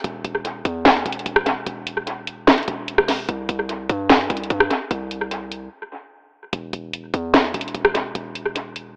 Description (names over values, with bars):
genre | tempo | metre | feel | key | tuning
hip hop, trap | 148 BPM | 4/4 | half-time | unclear | A4 = 441 Hz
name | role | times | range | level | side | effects
hard-hitting 808-style bass | bass | 0.0-9.0 s | E1 to G2 | -31 LUFS | equal | none
trap drum kit | drums | 0.0-8.9 s | handclaps, hi-hat, rim click, snare drum | -21 LUFS | equal | vintage 12-bit sampler grit, analog delay
room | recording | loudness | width
moderate spring reverb, RT60 2.2 s | echo-heavy mix, AM radio sound | -22 LUFS | mono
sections
0.0-9.0 A section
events
break 5.7-6.5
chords
none